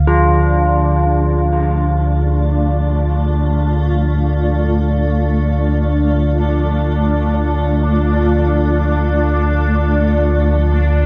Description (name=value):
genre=dark ambient drone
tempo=free time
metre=none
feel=none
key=unclear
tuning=A4 = 441 Hz
part: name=granular cloud pad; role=sustained chords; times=0.5-11.1 s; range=A3 to F5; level=-23 LUFS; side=equal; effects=built-in reverb
part: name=deep rumbling drone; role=drone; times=0.0-11.1 s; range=D2 to D3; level=-17 LUFS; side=equal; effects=built-in reverb
part: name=bubbling stepped-filter texture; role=texture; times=0.0-11.1 s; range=D4 to F5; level=-24 LUFS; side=equal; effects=chorus, built-in reverb
part: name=carillon bells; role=arpeggios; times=0.1-5.9 s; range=F4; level=-23 LUFS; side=equal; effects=tape echo
room=wet huge ambient reverb, RT60 7.2 s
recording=cassette tape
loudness=-15 LUFS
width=mono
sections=0.1-11.1 A section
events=none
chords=0.1 Dm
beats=free time